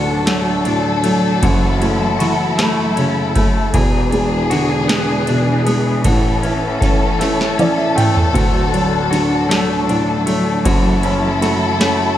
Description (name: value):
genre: six-eight pop ballad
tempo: 52 BPM (dotted quarters)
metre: 6/8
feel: straight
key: D major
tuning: A4 = 440 Hz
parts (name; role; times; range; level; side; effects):
- dark upright piano; accompaniment; 0.0-12.2 s; D1 to G5; -17 LUFS; right 1 dB; none
- warm studio string section; sustained chords; 0.0-12.2 s; E3 to A4; -19 LUFS; left 2 dB; none
- direct-recorded clean electric guitar; arpeggios; 0.0-12.2 s; E3 to A4; -22 LUFS; left 5 dB; lush chorus
- booming analog drum machine; drums; 0.3-12.0 s; kick drum, ride cymbal, snare drum, toms; -20 LUFS; equal; none
room: moderate concert hall reverb, RT60 2.1 s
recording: none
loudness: -13 LUFS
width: side -12 dB against mid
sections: 0.0-12.2 A section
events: drum fill 7.2-8.3; upright piano fill 7.2-8.3, 11.8-12.2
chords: 0.0 D; 1.4 F#m7; 3.7 E7; 6.0 A; 8.3 D; 10.7 F#m7